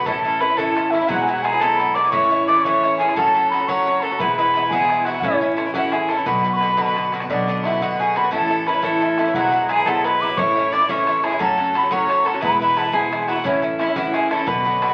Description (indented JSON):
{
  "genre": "celtic folk, Celtic jig",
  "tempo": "116 BPM (dotted quarters)",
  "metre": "6/8",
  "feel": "straight",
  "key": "unclear",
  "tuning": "A4 = 440 Hz",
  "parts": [
    { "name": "baroque flute", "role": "melody", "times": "0.0-14.9 s", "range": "C#5 to D6", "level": "-22 LUFS", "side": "equal", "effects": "none" },
    { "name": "warm fiddle", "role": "second line", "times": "0.0-14.9 s", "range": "C#4 to D5", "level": "-26 LUFS", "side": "equal", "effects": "none" },
    { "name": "Irish bouzouki", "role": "accompaniment", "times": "0.0-14.9 s", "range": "G#2 to F#4", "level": "-24 LUFS", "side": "equal", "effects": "none" },
    { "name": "upright bass", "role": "bass", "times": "0.0-14.9 s", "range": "E1 to B1", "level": "-37 LUFS", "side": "equal", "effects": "none" },
    { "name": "bodhran", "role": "percussion", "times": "0.1-14.9 s", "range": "none", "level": "-36 LUFS", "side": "equal", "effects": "none" }
  ],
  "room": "wet club reverb, RT60 0.7 s",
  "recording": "very old 78 rpm record, vinyl crackle",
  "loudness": "-19 LUFS",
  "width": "mono",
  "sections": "0.0-7.3 A section; 7.3-14.9 A section",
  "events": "none",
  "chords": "0.1 A; 1.1 Eadd9; 2.1 A; 3.2 F#m; 4.2 E; 5.2 A; 6.3 Bm; 8.3 A; 9.3 Eadd9; 10.4 A; 11.4 F#m; 12.4 E; 13.4 A",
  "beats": "| 0.06 0.58 | 1.10 1.61 | 2.13 2.65 | 3.16 3.68 | 4.20 4.71 | 5.23 5.75 | 6.26 6.78 | 7.29 7.81 | 8.32 8.84 | 9.35 9.86 | 10.38 10.89 | 11.40 11.91 | 12.43 12.94 | 13.45 13.96 | 14.47"
}